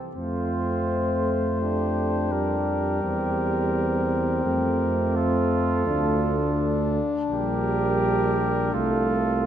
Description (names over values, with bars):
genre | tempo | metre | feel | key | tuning
classical, brass quintet | 84 BPM (dotted quarters) | 6/8 | straight | F major | A4 = 439 Hz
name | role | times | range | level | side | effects
warm trumpet | melody | 0.2-9.5 s | A4 to C5 | -31 LUFS | left 6 dB | none
mellow trumpet | second line | 0.2-9.5 s | F4 to G4 | -30 LUFS | right 5 dB | none
clear French horn | accompaniment | 0.2-9.1 s | C4 to D4 | -28 LUFS | left 3 dB | none
mellow trombone | accompaniment | 0.2-9.5 s | G3 to A3 | -28 LUFS | right 2 dB | none
warm bass trombone | bass | 0.2-9.5 s | Bb1 to F2 | -27 LUFS | right 1 dB | none
room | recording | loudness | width
wet concert hall reverb, RT60 2.1 s | none | -22 LUFS | side -10 dB against mid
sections
0.2-9.5 A section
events
none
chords
0.2 F; 1.6 Gm7/F; 3.0 C7/E; 4.5 F; 5.9 Dm; 7.3 Gm/Bb; 8.7 F/C